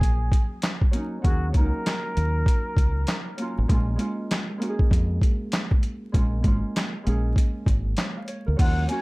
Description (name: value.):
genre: hip hop, boom-bap hip-hop.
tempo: 98 BPM.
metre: 4/4.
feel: swing 61% on 16ths.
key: unclear.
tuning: A4 = 440 Hz.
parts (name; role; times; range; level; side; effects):
trumpet with plunger mute; melody; 0.0-3.2, 8.6-9.0 s; Gb4 to Ab5; -32 LUFS; equal; high-pass filter, low-pass filter, analog delay.
Celtic harp; accompaniment; 0.0-9.0 s; Gb3 to F5; -31 LUFS; right 1 dB; high-pass filter, low-pass filter.
deep dub fingered electric bass; bass; 0.0-8.9 s; Ab1 to F2; -24 LUFS; equal; none.
boom bap sampler-style drum kit; drums; 0.0-9.0 s; crash cymbal, handclaps, hi-hat, kick drum, snare drum; -22 LUFS; equal; none.
room: little or no reverb.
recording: dark, warm production, vinyl crackle.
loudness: -21 LUFS.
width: side -24 dB against mid.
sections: 0.0-8.6 A section.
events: none.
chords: 0.0 Ebm7; 3.7 Bbm7.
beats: 0.02 0.63 | 1.24 1.85 2.47 3.08 | 3.69 4.30 4.92 5.53 | 6.14 6.75 7.37 7.98 | 8.59.